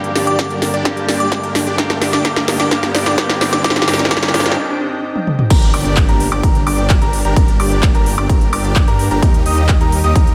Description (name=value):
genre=EDM, festival progressive house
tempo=129 BPM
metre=4/4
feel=straight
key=G minor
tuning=A4 = 440 Hz
part: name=direct-recorded clean electric guitar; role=accompaniment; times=0.0-4.6 s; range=G2 to G4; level=-24 LUFS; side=equal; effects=analog chorus, sidechain pumping
part: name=lush unison pad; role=sustained chords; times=0.0-10.3 s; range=D3 to A5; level=-28 LUFS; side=equal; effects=chorus, sidechain pumping
part: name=big supersaw lead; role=riff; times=0.0-10.3 s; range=D4 to Eb5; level=-24 LUFS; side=equal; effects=sidechain pumping, low-pass filter, dub echo
part: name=big-room dance drum kit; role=drums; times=0.0-10.3 s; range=crash cymbal, handclaps, hi-hat, ride cymbal, snare drum, toms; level=-21 LUFS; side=equal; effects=none
part: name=riser and impact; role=sound effects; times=0.0-7.4 s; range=none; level=-28 LUFS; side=equal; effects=none
part: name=glassy synth bell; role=melody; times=0.3-4.5 s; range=D6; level=-26 LUFS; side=equal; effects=chorus, dub echo
part: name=electronic kick drum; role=drums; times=0.4-10.2 s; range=none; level=-16 LUFS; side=equal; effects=high-pass filter on kick, high-pass filter on room
part: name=bright grand piano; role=arpeggios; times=5.5-10.3 s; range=Bb5 to Eb6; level=-25 LUFS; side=equal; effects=sidechain pumping, dub echo
part: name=detuned saw bass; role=bass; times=5.5-10.3 s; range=G1 to G2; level=-20 LUFS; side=equal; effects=chorus, sidechain pumping
room=moderate concert hall reverb, RT60 2.0 s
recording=none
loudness=-15 LUFS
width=mono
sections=0.0-5.5 A section; 5.5-10.3 B section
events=build-up 0.0-5.5; drum fill 0.0-4.6, 5.2-5.5; break 4.6-5.5; drop 5.5-10.3; impact 5.5-7.4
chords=0.0 Gm; 1.8 Eb; 3.6 Cm; 5.5 Gm; 9.2 Eb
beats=0.39 0.85 1.32 | 1.78 2.25 2.71 3.18 | 3.64 4.11 4.57 5.04 | 5.50 5.97 6.43 6.90 | 7.37 7.83 8.29 8.76 | 9.22 9.69 10.15